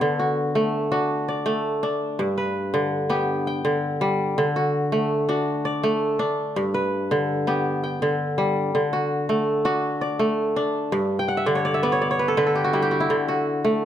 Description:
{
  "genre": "west african traditional",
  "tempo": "110 BPM (dotted quarters)",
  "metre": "12/8",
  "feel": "straight",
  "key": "D major",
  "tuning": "A4 = 440 Hz",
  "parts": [
    { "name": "kora", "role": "solo", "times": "0.0-13.8 s", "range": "G2 to G5", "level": "-21 LUFS", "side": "equal", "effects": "none" }
  ],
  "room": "light reverb",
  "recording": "none",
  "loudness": "-21 LUFS",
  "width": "side -10 dB against mid",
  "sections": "0.0-13.8 A section",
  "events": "kora fill 11.2-13.1",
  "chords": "0.0 D; 2.2 G; 4.4 D; 6.6 G; 8.8 D; 10.9 G; 13.1 D",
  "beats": "| 0.03 0.57 1.11 1.66 | 2.21 2.75 3.30 3.84 | 4.39 4.93 5.48 6.03 | 6.57 7.12 7.66 8.21 | 8.75 9.29 9.84 10.38 | 10.93 11.47 12.02 12.56 | 13.11 13.65"
}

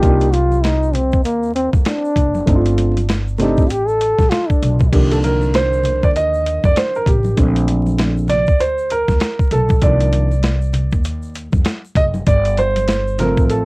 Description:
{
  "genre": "hip hop, jazz-hop",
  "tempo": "98 BPM",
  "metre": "4/4",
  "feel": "swing 61% on 16ths",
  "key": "C dorian",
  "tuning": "A4 = 440 Hz",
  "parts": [
    { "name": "breathy trombone", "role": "melody", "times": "0.0-4.8 s", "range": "Bb3 to A4", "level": "-19 LUFS", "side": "equal", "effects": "tape echo" },
    { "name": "dark concert grand piano", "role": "accompaniment", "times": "0.0-13.7 s", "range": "D3 to Eb5", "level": "-17 LUFS", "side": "right 2 dB", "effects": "none" },
    { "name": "upright bass", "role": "bass", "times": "0.0-13.7 s", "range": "F#1 to F2", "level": "-18 LUFS", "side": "equal", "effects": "none" },
    { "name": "boom bap sampler-style drum kit", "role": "drums", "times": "0.0-13.7 s", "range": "crash cymbal, hi-hat, kick drum, snare drum", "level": "-16 LUFS", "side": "equal", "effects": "vintage 12-bit sampler grit, cassette tape" },
    { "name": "egg shaker and congas", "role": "percussion", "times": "0.0-13.7 s", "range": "none", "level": "-28 LUFS", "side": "left 1 dB", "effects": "none" }
  ],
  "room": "little or no reverb",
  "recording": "home recording on cassette, vinyl crackle",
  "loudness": "-13 LUFS",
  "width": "side -25 dB against mid",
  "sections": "0.0-4.9 A section; 4.9-13.7 A section",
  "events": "trombone solo 0.0-4.9; grand piano solo 4.9-13.7",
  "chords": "0.0 Cmadd9; 2.5 G9sus4; 4.9 Cm11; 7.4 Bbmaj9; 9.8 Cm11; 12.3 G9sus4",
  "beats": "| 0.03 0.64 1.25 1.86 | 2.47 3.09 3.70 4.31 | 4.92 5.54 6.15 6.76 | 7.37 7.98 8.60 9.21 | 9.82 10.43 11.04 11.66 | 12.27 12.88 13.49"
}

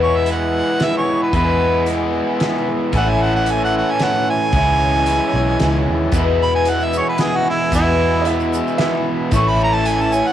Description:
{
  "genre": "folk rock and heartland rock",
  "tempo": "112 BPM",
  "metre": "3/4",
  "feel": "straight",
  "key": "E major",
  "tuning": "A4 = 440 Hz",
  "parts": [
    { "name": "warm harmonica", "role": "melody", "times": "0.0-10.3 s", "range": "E4 to C#6", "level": "-19 LUFS", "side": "right 2 dB", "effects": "cassette tape" },
    { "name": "picked twelve-string acoustic guitar", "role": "accompaniment", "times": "0.0-10.3 s", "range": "E2 to G#4", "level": "-23 LUFS", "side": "left 7 dB", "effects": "none" },
    { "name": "rich chamber string section", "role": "sustained chords", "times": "0.0-10.3 s", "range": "B3 to C#5", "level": "-29 LUFS", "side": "right 1 dB", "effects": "none" },
    { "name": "overdriven electric guitar", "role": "riff", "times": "0.0-10.3 s", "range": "E2 to E4", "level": "-20 LUFS", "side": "right 1 dB", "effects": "none" },
    { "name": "vintage muted fingered electric bass", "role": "bass", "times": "0.0-10.2 s", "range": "A1 to E2", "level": "-20 LUFS", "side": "equal", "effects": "transformer saturation" },
    { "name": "loose indie drum kit", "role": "drums", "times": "0.3-10.0 s", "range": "hi-hat, kick drum, snare drum", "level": "-25 LUFS", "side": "equal", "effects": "none" },
    { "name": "tube shaker", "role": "percussion", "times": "6.1-10.3 s", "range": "none", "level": "-36 LUFS", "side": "right 11 dB", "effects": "none" },
    { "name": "bright upright piano", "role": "second line", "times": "8.2-9.2 s", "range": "D#5 to E5", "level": "-24 LUFS", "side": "right 9 dB", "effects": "none" }
  ],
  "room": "light reverb",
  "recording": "home recording on cassette",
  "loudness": "-15 LUFS",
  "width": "side -11 dB against mid",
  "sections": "0.0-10.3 A section",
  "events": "harmonica solo 0.0-10.3",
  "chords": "0.0 E; 2.9 A; 4.5 C#m; 6.1 E; 9.3 A",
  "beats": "0.27 0.80 | 1.33 1.87 2.40 | 2.93 3.46 4.00 | 4.53 5.06 5.60 | 6.13 6.66 7.20 | 7.73 8.26 8.80 | 9.33 9.87"
}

